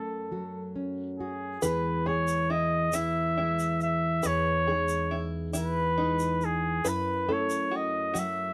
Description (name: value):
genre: acoustic folk duo or small band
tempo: 46 BPM (dotted quarters)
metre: 6/8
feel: straight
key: E major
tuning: A4 = 440 Hz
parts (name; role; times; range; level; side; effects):
- clear flugelhorn; melody; 0.0-8.5 s; G#4 to E5; -31 LUFS; equal; none
- nylon-string guitar; accompaniment; 0.0-8.5 s; E2 to G#4; -33 LUFS; equal; none
- open-back banjo; arpeggios; 1.6-8.5 s; D#4 to B4; -38 LUFS; equal; none
- tube shaker; percussion; 1.6-8.4 s; none; -42 LUFS; equal; none
room: light reverb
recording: close, detailed microphones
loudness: -29 LUFS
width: mono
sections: 0.0-1.6 A section; 1.6-8.5 B section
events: none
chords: 0.0 F#madd9; 1.6 Emaj7; 6.8 F#m7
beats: 0.32 | 1.63 2.93 | 4.24 5.54 | 6.85 8.15